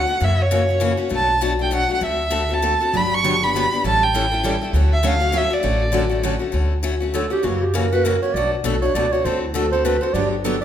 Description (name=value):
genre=acoustic string swing (jazz manouche)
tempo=200 BPM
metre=3/4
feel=swing 58% on 8ths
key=D major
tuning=A4 = 440 Hz
part: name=warm violin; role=melody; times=0.0-6.3 s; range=C#5 to C#6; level=-20 LUFS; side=right 2 dB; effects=none
part: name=upright bass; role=bass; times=0.0-10.6 s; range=G1 to F#2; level=-23 LUFS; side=equal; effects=none
part: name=picked steel-string acoustic guitar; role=accompaniment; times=0.1-10.6 s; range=B2 to A4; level=-23 LUFS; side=left 6 dB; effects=none
part: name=picked steel-string acoustic guitar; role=accompaniment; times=2.9-6.3, 10.1-10.6 s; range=D3 to A4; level=-26 LUFS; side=right 5 dB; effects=none
part: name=growling clarinet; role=second line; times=7.1-10.6 s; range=E4 to D5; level=-21 LUFS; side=right 5 dB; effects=none
room=wet recital hall reverb, RT60 1.6 s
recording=recorded in a church or concert hall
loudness=-17 LUFS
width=side -10 dB against mid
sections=0.0-6.5 A section; 6.5-10.6 B section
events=clarinet solo 6.5-10.6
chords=0.2 F#7; 1.1 Bm7; 2.0 D7; 2.9 Gmaj7; 3.8 A7; 4.7 Dmaj7; 7.4 F#7; 8.3 Bm7; 9.2 D7